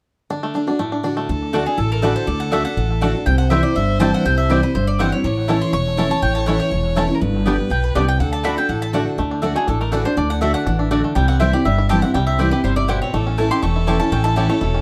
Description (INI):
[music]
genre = bluegrass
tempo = 243 BPM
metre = 4/4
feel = straight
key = D mixolydian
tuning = A4 = 440 Hz
[part]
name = bluegrass banjo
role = melody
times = 0.3-14.8 s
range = G3 to G4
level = -28 LUFS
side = equal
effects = tape echo
[part]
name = picked steel-string acoustic guitar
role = accompaniment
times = 0.3-14.8 s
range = E2 to G4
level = -24 LUFS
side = equal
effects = none
[part]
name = clear fiddle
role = second line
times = 1.3-9.1, 13.1-14.8 s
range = A4 to C#5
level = -29 LUFS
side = equal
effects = none
[part]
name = upright bass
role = bass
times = 1.3-14.8 s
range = E1 to D2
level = -23 LUFS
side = equal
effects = none
[part]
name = mandolin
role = stabs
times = 1.5-14.5 s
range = A3 to A5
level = -27 LUFS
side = equal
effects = none
[part]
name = mandolin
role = melody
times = 1.7-14.8 s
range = G#4 to C#6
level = -26 LUFS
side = equal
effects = tape echo
[sound]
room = light reverb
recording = dark, warm production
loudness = -18 LUFS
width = mono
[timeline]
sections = 1.3-9.2 A section; 9.2-14.8 A section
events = none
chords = 0.3 D; 3.3 C; 5.2 A; 7.2 G; 8.2 D; 11.2 C; 13.1 A